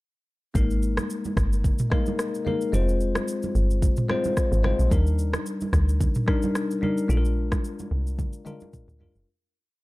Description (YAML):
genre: afrobeats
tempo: 110 BPM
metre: 4/4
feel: swing 55% on 16ths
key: unclear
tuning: A4 = 440 Hz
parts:
  - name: bell-like tine electric piano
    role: accompaniment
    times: 0.5-9.3 s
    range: G3 to C5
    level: -28 LUFS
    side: left 3 dB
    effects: phaser
  - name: deep log drum bass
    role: bass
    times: 0.6-9.3 s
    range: F1 to Eb2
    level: -23 LUFS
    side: equal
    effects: none
  - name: afro-pop drum kit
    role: drums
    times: 0.6-9.3 s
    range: kick drum, rim click, shaker, toms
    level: -25 LUFS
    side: equal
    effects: none
  - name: congas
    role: percussion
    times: 1.0-9.1 s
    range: none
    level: -34 LUFS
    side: right 4 dB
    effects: none
room: digital ambience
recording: dark, warm production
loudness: -22 LUFS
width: side -20 dB against mid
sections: 0.6-9.3 chorus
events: fade-out 7.1-9.3; drum fill 8.2-9.3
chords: 0.6 Absus2; 2.7 Fm; 4.9 Ebmaj7; 7.1 Bb7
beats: | 0.55 1.10 1.64 2.19 | 2.73 3.28 3.82 4.37 | 4.92 5.46 6.01 6.55 | 7.10 7.64 8.19 8.73